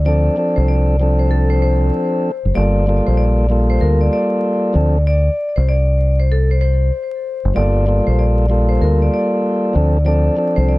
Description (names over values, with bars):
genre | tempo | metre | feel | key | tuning
hip hop, boom-bap hip-hop | 96 BPM | 4/4 | swing 63% on 16ths | G minor | A4 = 441 Hz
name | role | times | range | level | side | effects
vibraphone with medium hard mallets | melody | 0.0-10.8 s | A4 to D5 | -21 LUFS | left 2 dB | high-pass filter, low-pass filter, tape echo
deep dub fingered electric bass | bass | 0.0-10.8 s | F#1 to D2 | -14 LUFS | equal | transformer saturation
tonewheel organ | accompaniment | 0.1-10.8 s | F3 to A4 | -18 LUFS | equal | stopped rotary speaker, high-pass filter, low-pass filter
room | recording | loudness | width
little or no reverb | dry, gritty hardware recording, transformer saturation, vinyl crackle | -13 LUFS | side -20 dB against mid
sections
0.0-10.8 A section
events
none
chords
0.0 Dm7; 2.6 Gm9; 4.7 D7(no3); 7.6 Gm9; 9.7 Dm7